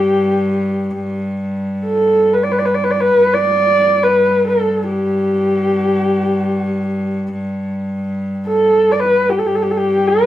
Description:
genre	mongolian traditional, Mongolian folk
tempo	free time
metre	none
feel	none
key	G gong mode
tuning	A4 = 436 Hz
part	dark horsehead fiddle	melody	0.0-10.3 s	G4 to D5	-14 LUFS	equal	none
part	bright cello	drone	0.0-10.3 s	G2	-20 LUFS	equal	none
room	wet small room reverb, RT60 0.6 s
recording	band playing live in one room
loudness	-14 LUFS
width	side -13 dB against mid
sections	0.0-10.3 A section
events	none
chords	none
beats	free time

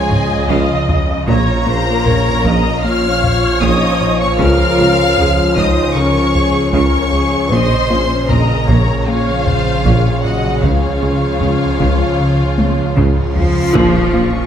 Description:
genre	cinematic, hybrid orchestral and electronic film score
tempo	77 BPM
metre	4/4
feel	straight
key	Bb minor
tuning	A4 = 440 Hz
part	rich symphonic violin section	melody	0.0-14.5 s	F5 to F6	-21 LUFS	left 2 dB	none
part	rich symphonic violin section	second line	0.0-14.5 s	F4 to F5	-23 LUFS	left 3 dB	none
part	warm symphonic viola section	accompaniment	0.0-14.5 s	F3 to Eb5	-22 LUFS	right 1 dB	none
part	dark trombone section	sustained chords	0.0-14.5 s	Db3 to Db4	-24 LUFS	right 3 dB	none
part	hollow soft pad	sustained chords	0.0-14.5 s	Db3 to F5	-23 LUFS	equal	chorus
part	mellow French horn section	sustained chords	0.0-14.5 s	F3 to C5	-21 LUFS	left 3 dB	none
part	snarling distorted saw bass	bass	0.0-14.5 s	Bb1 to Db2	-21 LUFS	equal	distortion
part	rubbery square bass	riff	0.1-14.4 s	Db2 to Bb3	-20 LUFS	left 2 dB	none
part	taiko ensemble	drums	0.1-14.5 s	none	-22 LUFS	equal	none
part	soft round pluck	arpeggios	0.5-14.4 s	Db3 to Bb4	-26 LUFS	right 1 dB	none
part	mellow tuba	bass	0.5-14.3 s	Bb1 to Db2	-22 LUFS	right 4 dB	none
part	rich symphonic cello section	bass	0.5-14.5 s	Bb2 to F3	-23 LUFS	right 3 dB	none
part	rich symphonic double bass section	bass	0.5-14.2 s	Bb1 to Db2	-24 LUFS	right 3 dB	none
part	reverse cymbal and impact	sound effects	13.5-14.5 s	none	-25 LUFS	equal	none
room	wet scoring stage reverb, RT60 1.9 s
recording	none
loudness	-11 LUFS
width	side -9 dB against mid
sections	0.0-13.8 A section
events	drum fill 0.1-1.3, 12.6-13.8; reverse cymbal 13.5; impact 13.8-14.5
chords	0.0 Db; 1.3 Bbm; 4.4 Db; 7.5 Bbm; 10.6 Db; 13.8 Bbm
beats	0.51 | 1.28 2.06 2.84 3.62 | 4.40 5.18 5.96 6.74 | 7.52 8.30 9.08 9.86 | 10.64 11.41 12.19 12.97 | 13.75

